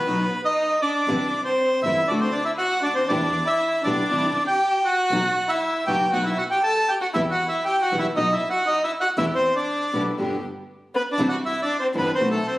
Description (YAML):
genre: tango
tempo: 119 BPM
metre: 4/4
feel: rubato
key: E minor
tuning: A4 = 438 Hz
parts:
  - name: bandoneon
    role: melody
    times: 0.0-12.5 s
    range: A4 to A5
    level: -22 LUFS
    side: right 1 dB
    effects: none
  - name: warm violin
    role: second line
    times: 0.0-12.6 s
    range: A3 to A4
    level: -26 LUFS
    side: left 1 dB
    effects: none
  - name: clear studio string section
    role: stabs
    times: 0.0-12.4 s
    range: B3 to B4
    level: -36 LUFS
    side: right 1 dB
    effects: none
  - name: dark double bass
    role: bass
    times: 0.0-12.4 s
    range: F#1 to E2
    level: -31 LUFS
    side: right 1 dB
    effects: none
  - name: nylon-string guitar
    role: accompaniment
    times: 0.1-12.4 s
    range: B2 to G4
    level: -27 LUFS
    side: left 1 dB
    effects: none
room: wet large studio reverb, RT60 1.2 s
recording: recorded on a phone in the room, studio reverb, compression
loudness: -20 LUFS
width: side -18 dB against mid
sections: 0.0-12.6 A section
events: none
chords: 0.1 B; 1.1 Cmaj7; 2.1 D; 3.1 Em7; 4.1 Cadd9; 5.1 B; 7.1 Em; 8.2 B; 9.2 Em7; 10.2 G; 11.2 Cadd9